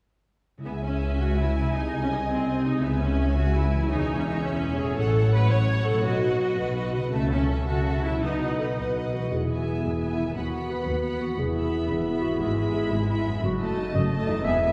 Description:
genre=classical, dramatic, fast romantic movement for symphony orchestra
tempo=107-118 BPM (dotted quarters)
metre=6/8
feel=straight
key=C# minor, E major from 5.0 s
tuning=A4 = 440 Hz
part: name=concert harp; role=arpeggios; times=0.6-14.7 s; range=E2 to C#5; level=-35 LUFS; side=equal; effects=none
part: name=rich symphonic violin section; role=melody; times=0.7-14.7 s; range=F#5 to B5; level=-42 LUFS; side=equal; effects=none
part: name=clear symphonic violin section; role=second line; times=0.7-14.7 s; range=A4 to G#5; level=-37 LUFS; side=equal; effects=none
part: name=rich symphonic viola section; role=accompaniment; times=0.7-14.7 s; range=G#3 to C#5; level=-32 LUFS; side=equal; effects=none
part: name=clear symphonic double bass section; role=bass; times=0.7-14.7 s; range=E1 to D#2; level=-30 LUFS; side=equal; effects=none
part: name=warm studio cello section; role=bass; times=0.7-14.7 s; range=B#1 to C#3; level=-33 LUFS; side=equal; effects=none
part: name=warm clarinet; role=second line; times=8.6-14.7 s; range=E4 to E5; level=-32 LUFS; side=equal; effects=none
part: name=mellow French horn section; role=sustained chords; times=9.3-14.3 s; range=A3 to F#4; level=-33 LUFS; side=equal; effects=none
room=wet concert hall reverb, RT60 2.3 s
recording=heard from further back in the room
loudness=-25 LUFS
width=mono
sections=0.7-9.3 A section; 9.3-14.7 B section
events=none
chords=0.7 C#m; 1.8 G#/B#; 2.8 C#m; 3.9 C#m/E; 5.0 F#m/A; 6.1 B; 7.1 A/C#; 8.2 B; 9.3 E; 10.4 B/D#; 11.4 E; 12.4 E/G#; 13.4 D#dim/F#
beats=| 0.68 1.22 | 1.76 2.31 | 2.85 3.38 | 3.92 4.45 | 4.98 5.52 | 6.05 6.59 | 7.12 7.67 | 8.22 8.78 | 9.33 9.84 | 10.36 10.87 | 11.38 11.89 | 12.41 12.92 | 13.43 13.94 | 14.45

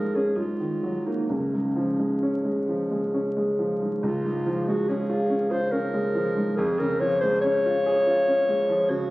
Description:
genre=classical, romantic duo for clarinet and grand piano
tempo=63-74 BPM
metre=3/4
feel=rubato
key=Db major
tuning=A4 = 438 Hz
part: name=warm clarinet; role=melody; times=0.0-9.1 s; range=Db4 to Db5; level=-24 LUFS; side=equal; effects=none
part: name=bright grand piano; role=accompaniment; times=0.0-9.1 s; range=Db2 to Ab4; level=-25 LUFS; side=equal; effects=none
room=moderate concert hall reverb, RT60 2.0 s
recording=recorded on a phone in the room, club reverb, vinyl crackle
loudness=-22 LUFS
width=side -18 dB against mid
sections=0.0-4.0 A section; 4.0-9.1 A section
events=none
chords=0.4 Absus2; 1.3 Db; 6.6 Db/F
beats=0.37 | 1.29 2.23 3.14 | 4.03 4.89 5.72 | 6.57 7.44 8.28

